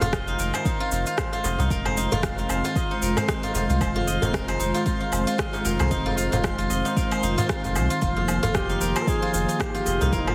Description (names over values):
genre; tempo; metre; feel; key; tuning
organic downtempo; 114 BPM; 4/4; swing 56% on 16ths; F minor; A4 = 443 Hz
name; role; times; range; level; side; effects
warm analog pad; sustained chords; 0.0-10.3 s; Eb3 to F4; -32 LUFS; equal; chorus, vintage 12-bit sampler grit, sidechain pumping, shimmer reverb
steel-string zither; arpeggios; 0.0-10.3 s; Eb4 to Eb5; -29 LUFS; equal; tape echo, shimmer reverb
warm sub bass; bass; 0.0-10.3 s; F1 to C2; -29 LUFS; equal; sidechain pumping
electronic shaker, rim click and woodblock; drums; 0.0-10.3 s; none; -33 LUFS; equal; none
djembe; percussion; 0.0-10.3 s; none; -33 LUFS; equal; none
twinkling granular texture; texture; 1.3-10.3 s; C5; -41 LUFS; equal; none
electronic kick drum; drums; 0.1-10.2 s; none; -31 LUFS; equal; none
mellow duduk; melody; 8.5-10.3 s; Eb4 to Bb4; -31 LUFS; equal; shimmer reverb
room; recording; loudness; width
moderate lush hall reverb, RT60 1.9 s; heavily compressed radio sound; -24 LUFS; mono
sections
0.0-10.3 A section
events
none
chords
0.0 Fm7; 8.0 Bbsus4/F